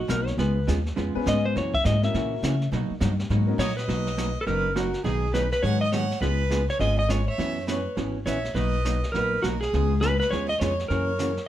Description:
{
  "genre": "country, western swing",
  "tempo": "205 BPM",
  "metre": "4/4",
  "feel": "swing 62% on 8ths",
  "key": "B major",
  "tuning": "A4 = 439 Hz",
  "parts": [
    { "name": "clean lap steel guitar", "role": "melody", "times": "0.0-11.5 s", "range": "F#4 to E5", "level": "-28 LUFS", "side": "equal", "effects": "plate reverb" },
    { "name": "upright bass", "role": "bass", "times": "0.0-11.4 s", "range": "F#1 to C#3", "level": "-26 LUFS", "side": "left 1 dB", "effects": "none" },
    { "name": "vintage hollow-body jazz guitar", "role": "accompaniment", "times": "0.1-11.3 s", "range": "B2 to G#4", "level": "-30 LUFS", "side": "right 3 dB", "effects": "none" },
    { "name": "warm upright piano", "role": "accompaniment", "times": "0.1-3.6 s", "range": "A#3 to B4", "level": "-31 LUFS", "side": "left 5 dB", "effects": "none" },
    { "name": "jazz brush drum kit", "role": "drums", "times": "0.1-11.5 s", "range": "brushed snare drum, hi-hat, kick drum, snare drum", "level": "-36 LUFS", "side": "equal", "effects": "none" },
    { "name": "rich fiddle", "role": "second line", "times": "3.6-11.4 s", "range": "G#4 to G#5", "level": "-32 LUFS", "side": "right 2 dB", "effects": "none" }
  ],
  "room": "light reverb",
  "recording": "none",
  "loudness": "-22 LUFS",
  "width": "side -12 dB against mid",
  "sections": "0.0-3.9 A section; 3.9-11.5 B section",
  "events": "electric slide guitar solo 0.0-3.9",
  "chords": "0.4 C#7; 1.5 F#7; 2.7 Bmaj7; 5.0 G#m7/B; 6.2 C#7; 7.4 F#7sus4; 8.6 Bmaj7; 9.7 C#7; 10.9 F#7",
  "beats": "0.09 | 0.38 0.67 0.97 1.26 | 1.55 1.84 2.13 2.42 | 2.71 3.01 3.30 3.59 | 3.88 4.17 4.46 4.76 | 5.05 5.34 5.63 5.92 | 6.22 6.51 6.80 7.09 | 7.39 7.68 7.97 8.26 | 8.56 8.85 9.14 9.44 | 9.73 10.02 10.31 10.61 | 10.90 11.19"
}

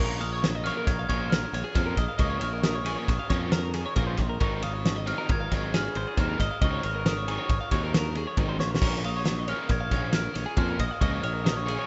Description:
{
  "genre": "math rock and midwest emo",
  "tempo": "136 BPM",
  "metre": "5/4",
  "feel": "straight",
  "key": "unclear",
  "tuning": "A4 = 440 Hz",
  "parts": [
    { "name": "glockenspiel with rubber mallets", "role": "melody", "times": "0.0-11.9 s", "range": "Db6 to Ab6", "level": "-36 LUFS", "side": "equal", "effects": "none" },
    { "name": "clean electric guitar", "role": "accompaniment", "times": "0.0-2.2 s", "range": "F4", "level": "-50 LUFS", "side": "equal", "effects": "none" },
    { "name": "twelve-string electric guitar", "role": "arpeggios", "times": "0.0-11.9 s", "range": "Ab4 to F5", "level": "-36 LUFS", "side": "equal", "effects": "spring reverb" },
    { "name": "crunchy overdriven guitar", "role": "riff", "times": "0.0-11.9 s", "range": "Bb2 to Eb4", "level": "-39 LUFS", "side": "equal", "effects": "none" },
    { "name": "modern bright picked electric bass", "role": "bass", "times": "0.0-11.8 s", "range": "Ab1 to F2", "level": "-34 LUFS", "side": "equal", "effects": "none" },
    { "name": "loose indie drum kit", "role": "drums", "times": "0.2-11.8 s", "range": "crash cymbal, kick drum, ride cymbal, snare drum", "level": "-30 LUFS", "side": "equal", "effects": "none" }
  ],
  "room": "light reverb, small room reverb",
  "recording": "rough home demo mix, nothing above 7.9 kHz",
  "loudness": "-27 LUFS",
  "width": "mono",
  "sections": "0.0-11.9 A section",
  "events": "drum fill 8.6",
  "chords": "0.0 Bbm; 4.4 Ab9sus4; 8.8 Bbm",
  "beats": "0.43 0.87 1.31 1.75 | 2.20 2.64 3.08 3.52 3.97 | 4.41 4.85 5.29 5.73 6.17 | 6.62 7.06 7.50 7.94 8.38 | 8.81 9.26 9.69 10.13 10.57 | 11.01 11.45"
}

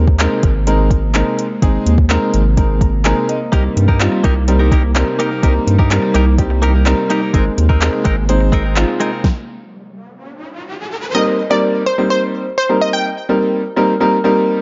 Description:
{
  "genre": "dance-pop",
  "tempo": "126 BPM",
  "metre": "4/4",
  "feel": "straight",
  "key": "C minor",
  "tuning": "A4 = 440 Hz",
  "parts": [
    { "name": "clear concert grand piano", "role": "accompaniment", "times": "0.0-14.6 s", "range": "G3 to Bb5", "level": "-19 LUFS", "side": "equal", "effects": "sidechain pumping" },
    { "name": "airy breathy pad", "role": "sustained chords", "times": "0.0-9.2 s", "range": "C3 to Eb4", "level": "-27 LUFS", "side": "equal", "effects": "chorus, sidechain pumping" },
    { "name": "saturated sub bass", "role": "bass", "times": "0.0-8.8 s", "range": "Ab1 to G2", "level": "-16 LUFS", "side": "equal", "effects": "sidechain pumping" },
    { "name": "smooth R&B drum kit", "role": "drums", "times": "0.1-9.4 s", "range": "handclaps, hi-hat, kick drum, snare drum", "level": "-19 LUFS", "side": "equal", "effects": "overdrive" },
    { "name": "direct-recorded clean electric guitar", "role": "riff", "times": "3.5-9.3 s", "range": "Ab3 to Bb4", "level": "-24 LUFS", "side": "equal", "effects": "subtle chorus" },
    { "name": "riser", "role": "sound effects", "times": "9.8-11.1 s", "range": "none", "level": "-30 LUFS", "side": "equal", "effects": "none" },
    { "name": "unison pluck", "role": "melody", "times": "11.1-13.4 s", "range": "C5 to G5", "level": "-20 LUFS", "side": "equal", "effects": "tape echo" }
  ],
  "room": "light reverb",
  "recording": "dark, warm production, nothing above 7.5 kHz",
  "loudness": "-15 LUFS",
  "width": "mono",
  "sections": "0.0-11.1 A section; 11.1-14.6 B section",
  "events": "grand piano fill 2.6-3.5; stop 9.2-11.1; riser 9.9-11.1",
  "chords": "0.0 Abadd9; 3.5 Cm7; 7.3 Abadd9; 9.2 N.C.; 11.1 Cm7",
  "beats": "0.20 0.67 1.15 | 1.62 2.10 2.58 3.05 | 3.53 4.00 4.48 4.96 | 5.43 5.91 6.39 6.86 | 7.34 7.81 8.29 8.77 | 9.24 9.72 10.20 10.67 | 11.15 11.62 12.10 12.58 | 13.05 13.53 14.01 14.48"
}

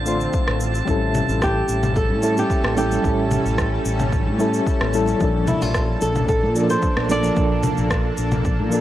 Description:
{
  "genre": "sunset chillout",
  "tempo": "111 BPM",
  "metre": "4/4",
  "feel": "straight",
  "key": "unclear",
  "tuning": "A4 = 439 Hz",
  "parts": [
    { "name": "soft electric-piano-like synth keys", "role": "accompaniment", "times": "0.0-8.8 s", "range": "F3 to C5", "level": "-23 LUFS", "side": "moving between left 4 dB and right 4 dB", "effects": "chorus, tremolo, auto-pan, tape echo" },
    { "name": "shimmering ambient pad", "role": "sustained chords", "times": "0.0-8.8 s", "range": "D3 to A4", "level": "-29 LUFS", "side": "equal", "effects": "chorus, built-in reverb, vintage 12-bit sampler grit" },
    { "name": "fretless electric bass", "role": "bass", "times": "0.0-8.8 s", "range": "A1 to Bb2", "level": "-24 LUFS", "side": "equal", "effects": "analog chorus" },
    { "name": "drifting glass-harmonics texture", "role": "texture", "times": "0.0-8.8 s", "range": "A5", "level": "-32 LUFS", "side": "right 6 dB", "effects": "chorus, built-in reverb" },
    { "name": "electronic shaker, rim click and congas", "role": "drums", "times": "0.1-8.8 s", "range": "none", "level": "-26 LUFS", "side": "left 2 dB", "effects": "none" },
    { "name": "electronic kick drum", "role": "drums", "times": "0.3-8.6 s", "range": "none", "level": "-24 LUFS", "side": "equal", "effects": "none" },
    { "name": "flamenco guitar", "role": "melody", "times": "1.4-7.6 s", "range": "E4 to D5", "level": "-24 LUFS", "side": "equal", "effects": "tape echo" },
    { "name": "congas", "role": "percussion", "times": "1.8-8.4 s", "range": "none", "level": "-33 LUFS", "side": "left 3 dB", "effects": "none" }
  ],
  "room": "little or no reverb",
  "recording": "dry, gritty hardware recording, cassette tape",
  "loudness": "-17 LUFS",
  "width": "side -13 dB against mid",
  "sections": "0.0-8.8 A section",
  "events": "none",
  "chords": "0.0 Dm7; 0.6 A7; 5.2 Bbmaj7",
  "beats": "0.34 | 0.88 1.42 1.96 2.50 | 3.04 3.58 4.12 4.67 | 5.21 5.75 6.29 6.83 | 7.37 7.91 8.45"
}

